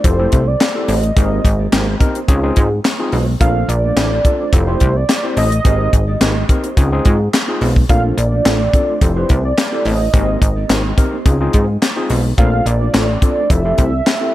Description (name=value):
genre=early-eighties boogie funk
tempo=107 BPM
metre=4/4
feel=straight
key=unclear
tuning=A4 = 440 Hz
part: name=warm velvety synth lead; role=melody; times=0.0-14.3 s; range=C5 to F5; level=-20 LUFS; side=right 2 dB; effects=chorus
part: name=overdriven tine electric piano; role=accompaniment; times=0.0-14.3 s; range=C4 to C5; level=-23 LUFS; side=left 3 dB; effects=none
part: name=mellow electric guitar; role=riff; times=0.0-14.2 s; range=Ab3 to D5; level=-26 LUFS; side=right 2 dB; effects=wide subtle chorus
part: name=plucky analog bass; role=bass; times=0.0-14.0 s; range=F1 to Ab2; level=-16 LUFS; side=equal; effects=none
part: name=tight funk drum kit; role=drums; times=0.0-14.2 s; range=handclaps, hi-hat, kick drum, snare drum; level=-15 LUFS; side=equal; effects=gated reverb
room=little or no reverb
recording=none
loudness=-12 LUFS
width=side -15 dB against mid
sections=0.0-14.3 A section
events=none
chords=0.0 Fmaj9; 1.2 Abmaj9; 2.3 Dbmaj9; 3.4 Bbmaj9; 4.5 Fmaj9; 5.7 Abmaj9; 6.8 Dbmaj9; 7.9 Bbmaj9; 9.0 Fmaj9; 10.1 Abmaj9; 11.3 Dbmaj9; 12.4 Bbmaj9; 13.5 Fmaj9